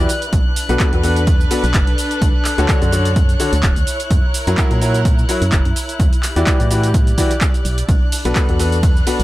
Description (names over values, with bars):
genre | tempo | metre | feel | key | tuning
piano house | 127 BPM | 4/4 | swing 55% on 16ths | B minor | A4 = 438 Hz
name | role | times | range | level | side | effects
warm chamber violin section | sustained chords | 0.0-9.2 s | F#6 | -27 LUFS | left 2 dB | sidechain pumping
clear upright piano | riff | 0.0-9.2 s | B2 to D5 | -20 LUFS | left 2 dB | sidechain pumping, dub echo
organ-like FM bass | bass | 0.0-9.2 s | D1 to A#2 | -18 LUFS | equal | sidechain pumping
rich studio string section | texture | 0.0-9.2 s | D4 to D5 | -27 LUFS | equal | sidechain pumping
punchy analog drum machine | drums | 0.1-9.2 s | handclaps, hi-hat, ride cymbal, shaker | -24 LUFS | right 1 dB | none
electronic kick drum | drums | 0.3-8.9 s | none | -16 LUFS | equal | none
room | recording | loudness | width
digital ambience | none | -13 LUFS | side -17 dB against mid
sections
0.0-9.2 A section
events
none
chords
0.3 Bm7; 2.0 Dmaj7; 3.9 F#7; 6.0 Em9; 7.9 Bm7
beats
| 0.33 0.80 1.27 1.75 | 2.22 2.69 3.16 3.63 | 4.11 4.58 5.05 5.52 | 6.00 6.47 6.94 7.41 | 7.89 8.36 8.83